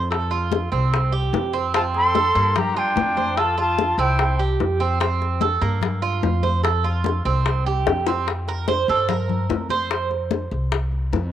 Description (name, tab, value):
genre	latin, Cuban son and guajira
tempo	147 BPM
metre	4/4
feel	straight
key	F major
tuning	A4 = 440 Hz
part	Cuban tres	arpeggios	0.0-10.1 s	Bb3 to C5	-23 LUFS	right 6 dB	none
part	upright bass	bass	0.0-11.3 s	C2 to G2	-23 LUFS	equal	none
part	bongos	percussion	0.1-11.3 s	none	-26 LUFS	left 9 dB	none
part	congas	percussion	0.1-11.3 s	none	-30 LUFS	left 8 dB	none
part	warm trumpet	second line	1.7-4.4 s	D4 to A4	-28 LUFS	left 7 dB	none
part	concert flute	melody	1.8-4.4 s	G5 to C6	-21 LUFS	right 1 dB	cassette tape
room	moderate spring reverb, RT60 2.7 s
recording	home recording on cassette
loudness	-19 LUFS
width	side -11 dB against mid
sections	0.0-8.3 A section; 8.3-11.3 B section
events	drum fill 7.9-8.3; Cuban tres solo 8.3-11.3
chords	0.1 F; 0.9 C5; 1.7 F; 2.6 Gm7; 3.4 F; 4.2 C5; 5.0 F; 5.8 Gm7; 6.6 F; 7.5 C5; 8.3 Fadd9; 9.9 F5